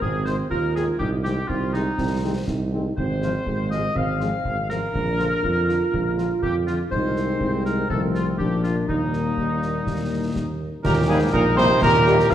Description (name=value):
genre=military-style march for wind band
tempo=122 BPM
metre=2/4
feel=straight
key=Eb major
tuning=A4 = 439 Hz
part: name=mellow euphonium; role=second line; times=0.0-12.3 s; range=Ab2 to F4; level=-26 LUFS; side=right 3 dB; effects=none
part: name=warm woodwind section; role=second line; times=0.0-12.3 s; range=Eb4 to F5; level=-27 LUFS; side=left 1 dB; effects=none
part: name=clear tuba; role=bass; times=0.0-12.3 s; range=Ab1 to F2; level=-25 LUFS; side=right 2 dB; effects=none
part: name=concert bass drum, concert snare drum and clash cymbals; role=drums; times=0.0-12.3 s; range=none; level=-31 LUFS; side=left 1 dB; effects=none
part: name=mellow trumpet section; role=melody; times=0.3-12.3 s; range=C4 to F5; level=-26 LUFS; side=equal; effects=none
part: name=dark French horn section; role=accompaniment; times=0.3-12.2 s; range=Bb2 to G4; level=-29 LUFS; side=left 4 dB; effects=none
part: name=mellow wooden piccolo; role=second line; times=10.8-12.3 s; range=Ab5 to F6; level=-28 LUFS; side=left 1 dB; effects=none
part: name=warm trombone section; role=sustained chords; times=11.1-12.2 s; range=G3 to Bb3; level=-28 LUFS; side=right 1 dB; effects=none
room=wet recital hall reverb, RT60 1.8 s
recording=dark, warm production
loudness=-20 LUFS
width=side -10 dB against mid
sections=0.0-10.8 A section; 10.8-12.3 B section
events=none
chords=0.0 Ab; 1.0 Ab/C; 3.0 Fm/Ab; 4.9 Bb; 6.9 Ab/C; 7.9 F7/C; 8.4 Bb; 8.9 Eb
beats=| 0.01 0.50 | 1.00 1.49 | 1.98 2.48 | 2.97 3.46 | 3.96 4.45 | 4.94 5.43 | 5.92 6.42 | 6.91 7.40 | 7.89 8.38 | 8.88 9.37 | 9.86 10.35 | 10.84 11.33 | 11.82 12.31